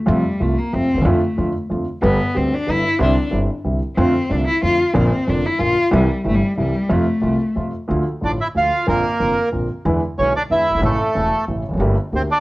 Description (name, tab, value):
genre	tango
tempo	185 BPM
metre	3/4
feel	rubato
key	F major, D minor from 7.9 s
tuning	A4 = 440 Hz
part	warm cello	second line	0.1-7.6 s	G3 to F4	-20 LUFS	left 1 dB	none
part	warm concert grand piano	accompaniment	0.1-12.3 s	E1 to G4	-20 LUFS	equal	none
part	upright bass	bass	0.1-12.3 s	E1 to F2	-23 LUFS	equal	transformer saturation
part	bandoneon	melody	8.2-12.4 s	A3 to F5	-18 LUFS	right 1 dB	none
room	light reverb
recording	worn, warbling old tape, cassette tape, warbly pitch drift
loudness	-16 LUFS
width	side -19 dB against mid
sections	0.0-7.9 A section; 7.9-12.4 B section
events	cello solo 0.0-7.9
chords	0.1 F; 1.1 Dm/F; 2.0 G; 3.0 Cadd9; 4.0 F6; 5.0 Bb; 5.9 C; 6.9 F; 7.9 Dm; 8.9 Bbadd9; 9.8 E7; 10.8 A; 11.8 Gmadd9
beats	| 0.08 0.41 0.74 | 1.06 1.39 1.71 | 2.03 2.35 2.67 | 3.00 3.32 3.65 | 3.98 4.31 4.63 | 4.96 5.28 5.60 | 5.92 6.25 6.57 | 6.90 7.22 7.56 | 7.89 8.22 8.55 | 8.87 9.20 9.52 | 9.85 10.17 10.50 | 10.82 11.15 11.47 | 11.80 12.13